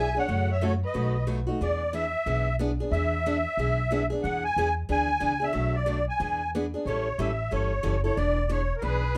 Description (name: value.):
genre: acoustic string swing (jazz manouche).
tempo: 183 BPM.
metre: 4/4.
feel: swing 61% on 8ths.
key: E mixolydian.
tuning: A4 = 440 Hz.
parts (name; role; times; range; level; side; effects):
musette accordion; melody; 0.0-9.2 s; A#4 to G#5; -30 LUFS; equal; none.
warm violin; second line; 0.0-1.3, 8.8-9.2 s; G#4 to E5; -38 LUFS; equal; none.
picked steel-string acoustic guitar; accompaniment; 0.0-9.2 s; B2 to A4; -33 LUFS; equal; none.
upright bass; bass; 0.0-9.2 s; E1 to F#2; -31 LUFS; equal; none.
room: moderate studio ambience, RT60 0.5 s.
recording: none.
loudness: -27 LUFS.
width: mono.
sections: 0.0-1.6 A section; 1.6-9.2 A section.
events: none.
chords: 0.3 F#m7; 1.0 B7; 1.6 E7; 5.5 Bm7; 6.2 E7; 6.9 A7; 8.2 E7.